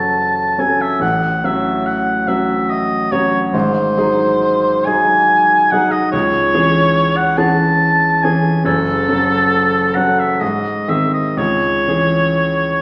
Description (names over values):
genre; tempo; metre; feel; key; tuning
classical, romantic duo for oboe and grand piano; 59-74 BPM; 3/4; rubato; C# minor; A4 = 440 Hz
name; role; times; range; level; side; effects
warm oboe; melody; 0.0-12.8 s; A4 to A5; -17 LUFS; equal; none
clear baby grand piano; accompaniment; 0.0-12.8 s; F#1 to A4; -20 LUFS; equal; none
room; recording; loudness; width
wet recital hall reverb, RT60 1.4 s; heard from further back in the room; -15 LUFS; mono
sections
0.0-12.8 A section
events
none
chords
0.0 F#m; 1.0 F#m/A; 3.5 G#7; 6.1 C#m; 8.7 F#m; 10.4 G#; 11.4 C#m